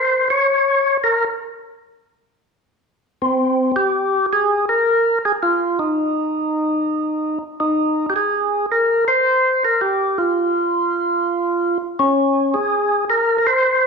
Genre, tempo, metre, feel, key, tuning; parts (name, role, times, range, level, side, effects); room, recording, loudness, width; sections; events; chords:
jazz; 109 BPM; 4/4; swing 67% on 8ths; F minor; A4 = 436 Hz
percussive tonewheel organ; solo; 0.0-13.9 s; C4 to Db5; -16 LUFS; equal; slow rotary speaker
wet large studio reverb, RT60 1.3 s; band playing live in one room; -16 LUFS; side -5 dB against mid
0.0-3.2 A section; 3.2-13.9 B section
tonewheel organ solo 0.0-3.2